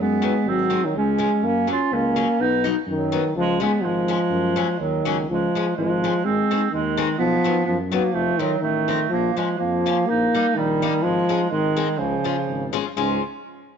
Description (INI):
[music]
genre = alpine folk, alpine dance band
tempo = 125 BPM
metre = 2/4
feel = rubato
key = F# major, Db major from 5.3 s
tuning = A4 = 441 Hz
[part]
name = mellow euphonium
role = melody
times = 0.0-13.2 s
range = Ab2 to C#4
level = -22 LUFS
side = left 1 dB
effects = none
[part]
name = warm clarinet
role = second line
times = 0.0-13.2 s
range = F3 to E#4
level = -25 LUFS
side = right 10 dB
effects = none
[part]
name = warm tuba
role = bass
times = 0.0-13.2 s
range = F1 to F#2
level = -30 LUFS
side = equal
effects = none
[part]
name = picked steel-string acoustic guitar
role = accompaniment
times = 0.2-13.2 s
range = D#3 to F4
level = -28 LUFS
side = left 13 dB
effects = none
[sound]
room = moderate echo chamber reverb, RT60 1.8 s, small room ambience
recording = 1960s-style stereo with parts hard left and right, nothing above 7.9 kHz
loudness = -19 LUFS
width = side -7 dB against mid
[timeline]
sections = 0.0-5.3 A section; 5.3-13.0 B section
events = none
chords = 0.5 G#7; 0.9 C#; 1.4 F#; 2.4 B; 3.3 C#; 4.3 F#; 5.3 Db; 6.2 Ab; 7.2 Cb; 8.1 F7; 9.1 Bbm; 10.1 Eb/Bb; 11.0 Absus4; 11.5 Ab; 12.0 Db